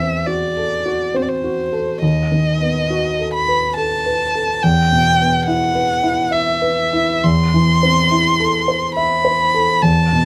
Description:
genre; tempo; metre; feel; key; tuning
classical, romantic duo for violin and grand piano; 69 BPM; 3/4; rubato; unclear; A4 = 440 Hz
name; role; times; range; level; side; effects
dark violin; melody; 0.0-10.2 s; C5 to C6; -20 LUFS; equal; none
warm grand piano; accompaniment; 0.0-10.2 s; D#2 to E5; -20 LUFS; equal; none
room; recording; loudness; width
light reverb; close, detailed microphones; -17 LUFS; mono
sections
0.0-10.2 A section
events
none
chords
0.0 F#m7b5/E; 2.0 B7/D#; 4.6 Em; 7.2 Am/E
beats
0.27 1.15 | 2.02 2.90 3.77 | 4.63 5.47 6.32 | 7.24 8.10 8.96 | 9.82

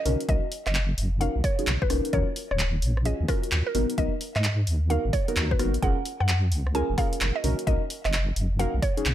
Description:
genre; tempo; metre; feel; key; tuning
UK garage, two-step garage; 130 BPM; 4/4; swing 65% on 16ths; unclear; A4 = 440 Hz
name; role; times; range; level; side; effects
mallet-like synth pluck; melody; 0.0-9.0 s; A#4 to G#5; -32 LUFS; equal; chorus, vintage 12-bit sampler grit, dub echo
deep mellow chord stab; stabs; 0.0-9.1 s; B3 to A#4; -30 LUFS; equal; chorus
deep soft wobble bass; bass; 0.1-9.1 s; D#1 to G#2; -25 LUFS; equal; chorus
punchy analog drum machine; drums; 0.1-9.1 s; handclaps, hi-hat, rim click; -31 LUFS; equal; none
electronic kick drum; drums; 0.3-8.9 s; none; -26 LUFS; equal; none
room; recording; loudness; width
little or no reverb; none; -23 LUFS; side -12 dB against mid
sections
0.0-9.1 A section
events
none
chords
0.1 Bmaj7; 2.1 D#m7; 3.7 G#m9; 5.8 F#maj9; 7.4 Bmaj7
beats
| 0.29 0.75 1.21 1.67 | 2.13 2.59 3.06 3.52 | 3.98 4.44 4.90 5.36 | 5.83 6.29 6.75 7.21 | 7.67 8.13 8.59 9.05

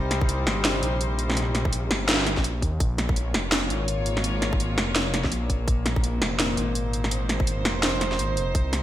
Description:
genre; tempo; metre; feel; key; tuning
half-time drum and bass; 167 BPM; 4/4; swing 60% on 16ths, half-time; unclear; A4 = 444 Hz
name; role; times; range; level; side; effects
warm studio string section; sustained chords; 0.0-8.8 s; Bb2 to Db5; -30 LUFS; left 1 dB; sidechain pumping
dark detuned saw bass; bass; 0.0-8.8 s; F1 to Eb2; -27 LUFS; equal; none
drum and bass drum kit; drums; 0.1-8.8 s; hi-hat, snare drum; -25 LUFS; equal; gated reverb
electronic kick drum; drums; 0.2-8.6 s; none; -25 LUFS; equal; none
room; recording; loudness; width
light reverb; bright 1980s-style digital production; -22 LUFS; side -12 dB against mid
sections
0.0-8.6 A section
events
drop 0.0-8.6; kick drops out 7.8-8.6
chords
0.0 Cm; 2.8 Bbm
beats
0.29 0.65 1.01 | 1.37 1.73 2.08 2.44 | 2.80 3.16 3.52 3.88 | 4.24 4.60 4.96 5.32 | 5.68 6.04 6.40 6.75 | 7.11 7.47 7.83 8.19 | 8.55

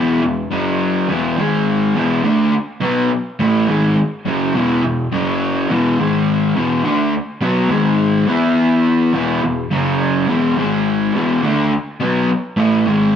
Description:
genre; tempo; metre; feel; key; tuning
rock; 104 BPM; 4/4; straight; E major; A4 = 440 Hz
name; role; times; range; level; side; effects
raw garage guitar; solo; 0.0-13.2 s; E2 to E4; -14 LUFS; equal; overdrive, spring reverb
room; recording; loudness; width
moderate stone room reverb, RT60 1.0 s; band playing live in one room; -14 LUFS; side -8 dB against mid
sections
0.0-9.1 A section; 9.1-13.2 B section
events
none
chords
0.0 E5; 0.5 F#5; 1.1 E5; 1.4 G#5; 2.0 E; 5.1 F#5; 5.7 E5; 6.0 G#5; 6.6 E5; 7.7 G#5; 8.3 E5; 9.7 F#5; 10.3 E5; 10.6 G#5; 11.1 E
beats
0.52 1.09 1.67 | 2.24 2.82 3.39 3.97 | 4.54 5.12 5.69 6.26 | 6.84 7.41 7.99 8.56 | 9.13 9.71 10.28 10.86 | 11.43 12.01 12.58

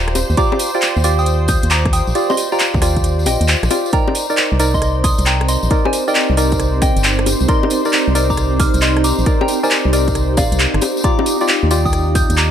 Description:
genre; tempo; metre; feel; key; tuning
UK garage, two-step garage; 135 BPM; 4/4; swing 66% on 16ths; unclear; A4 = 438 Hz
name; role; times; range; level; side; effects
warm analog pad; sustained chords; 0.0-12.5 s; Eb4 to C5; -27 LUFS; right 2 dB; chorus, sidechain pumping
percussive organ stab; stabs; 0.0-12.5 s; Eb4 to D5; -20 LUFS; equal; chorus, ping-pong delay
organ-like FM bass; bass; 0.0-12.5 s; Eb1 to Eb2; -17 LUFS; equal; none
house drum kit; drums; 0.1-12.5 s; bongos, handclaps, hi-hat, rim click; -19 LUFS; left 1 dB; none
tambourine; percussion; 0.2-12.5 s; none; -27 LUFS; left 4 dB; none
soft synth bell; melody; 0.4-12.5 s; C5 to G6; -23 LUFS; equal; chorus, dub echo
electronic kick drum; drums; 0.4-12.3 s; none; -18 LUFS; equal; none
ethereal airy pad; texture; 5.0-12.5 s; C4 to G5; -22 LUFS; right 2 dB; ensemble chorus, built-in reverb, sidechain pumping
room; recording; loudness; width
light reverb; none; -13 LUFS; side -9 dB against mid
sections
0.0-3.9 A section; 3.9-12.5 A section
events
drop 0.0-3.9, 3.9-12.5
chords
0.0 Ebmaj7; 3.9 Cm9; 11.0 Ebmaj7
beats
| 0.37 0.82 1.26 1.71 | 2.15 2.60 3.04 3.48 | 3.93 4.37 4.82 5.26 | 5.71 6.15 6.60 7.04 | 7.49 7.93 8.37 8.82 | 9.26 9.71 10.15 10.60 | 11.04 11.48 11.93 12.37

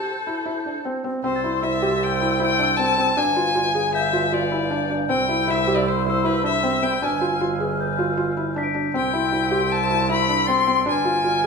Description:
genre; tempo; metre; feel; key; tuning
contemporary instrumental, chamber music in an uneven meter; 156 BPM; 5/4; straight; unclear; A4 = 439 Hz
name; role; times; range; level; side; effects
rich violin; melody; 0.0-11.5 s; A4 to C6; -22 LUFS; left 4 dB; none
breathy mellow large flute ensemble; sustained chords; 0.0-11.5 s; B4 to G6; -29 LUFS; equal; none
felt-muted upright piano; arpeggios; 0.0-11.5 s; C4 to Ab4; -24 LUFS; equal; none
rich double bass; bass; 1.2-11.5 s; G1 to C2; -27 LUFS; right 8 dB; none
crotales; texture; 1.4-11.0 s; E6 to D7; -31 LUFS; left 6 dB; none
room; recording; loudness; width
wet recital hall reverb, RT60 1.6 s; minimal, uncompressed stereo recording; -19 LUFS; side -4 dB against mid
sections
0.0-1.2 A section; 1.2-11.5 B section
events
break 0.0-1.2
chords
0.0 C; 3.2 G7b9; 5.1 Cmaj7; 7.0 G7b9; 8.9 C; 10.9 G7b9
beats
0.08 0.47 0.86 | 1.24 1.63 2.01 2.40 2.78 | 3.17 3.55 3.94 4.32 4.71 | 5.09 5.48 5.86 6.25 6.63 | 7.02 7.40 7.79 8.17 8.56 | 8.94 9.33 9.71 10.10 10.48 | 10.87 11.25

